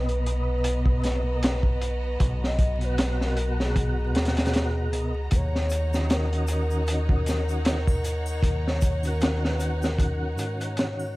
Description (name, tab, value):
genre	trip hop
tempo	77 BPM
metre	4/4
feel	swing 56% on 16ths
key	Eb minor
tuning	A4 = 440 Hz
part	pure breathy sine lead	melody	0.0-11.2 s	Ab4 to D#5	-33 LUFS	equal	chorus, tape echo
part	mellow tonewheel organ	accompaniment	0.0-11.2 s	B2 to F#5	-32 LUFS	equal	chorus vibrato, fast rotary speaker, tremolo
part	rich studio violin section	sustained chords	0.0-11.2 s	B3 to A#5	-37 LUFS	left 1 dB	none
part	deep dub fingered electric bass	bass	0.0-11.2 s	B1 to Ab2	-26 LUFS	equal	tube saturation
part	crunchy breakbeat drum kit	drums	0.1-11.0 s	hi-hat, kick drum, snare drum	-26 LUFS	equal	none
part	egg shaker and triangle	percussion	5.3-11.1 s	none	-45 LUFS	left 4 dB	none
room	small room ambience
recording	vinyl crackle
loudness	-22 LUFS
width	side -20 dB against mid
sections	0.0-11.2 A section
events	fade-out 9.5-11.2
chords	0.0 Bmaj7; 5.3 Ebm7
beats	0.64 1.42 | 2.20 2.98 3.76 4.54 | 5.32 6.10 6.88 7.65 | 8.43 9.21 9.99 10.77